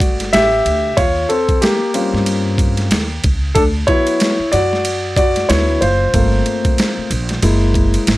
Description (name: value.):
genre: hip hop, jazz-hop.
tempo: 93 BPM.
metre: 4/4.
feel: swing 59% on 16ths.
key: unclear.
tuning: A4 = 440 Hz.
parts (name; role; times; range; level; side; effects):
dark baby grand piano; accompaniment; 0.0-8.2 s; F#3 to E5; -16 LUFS; left 1 dB; none.
upright bass; bass; 0.0-8.2 s; F#1 to G2; -18 LUFS; equal; none.
boom bap sampler-style drum kit; drums; 0.0-8.2 s; hi-hat, kick drum, ride cymbal, snare drum; -18 LUFS; right 1 dB; overdrive.
room: moderate studio reverb, RT60 0.6 s.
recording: none.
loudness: -13 LUFS.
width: side -17 dB against mid.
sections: 0.0-8.2 A section.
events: grand piano solo 0.0-8.2.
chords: 0.0 Em11; 1.0 D#13; 3.6 D69; 6.1 Gm11; 7.4 F#9.